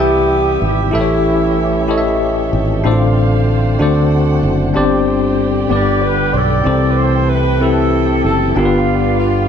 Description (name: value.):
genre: slow gospel.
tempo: 63 BPM (dotted quarters).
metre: 6/8.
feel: straight.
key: C major.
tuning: A4 = 440 Hz.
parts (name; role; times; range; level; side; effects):
breathy alto saxophone; melody; 0.0-2.2, 5.7-9.5 s; E4 to D5; -20 LUFS; right 5 dB; none.
warm horn section; melody; 0.0-2.2, 5.7-9.5 s; G3 to D5; -20 LUFS; left 1 dB; none.
bell-like tine electric piano; accompaniment; 0.0-9.5 s; G2 to B5; -15 LUFS; left 4 dB; fast stereo tremolo.
percussive tonewheel organ; sustained chords; 0.0-9.5 s; C3 to G4; -22 LUFS; right 3 dB; slow rotary speaker, chorus vibrato.
warm studio string section; sustained chords; 0.0-9.5 s; C4 to G5; -26 LUFS; right 3 dB; none.
fingered electric bass; bass; 0.0-9.5 s; F#1 to D2; -18 LUFS; right 1 dB; none.
room: moderate large studio reverb, RT60 1.2 s.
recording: none.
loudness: -12 LUFS.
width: side -8 dB against mid.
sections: 0.0-9.5 A section.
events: none.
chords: 0.0 Cmaj7; 0.9 A7; 2.8 Dm7/A; 3.8 D7; 4.8 Gsus4; 5.7 G; 6.7 C6; 8.6 G7.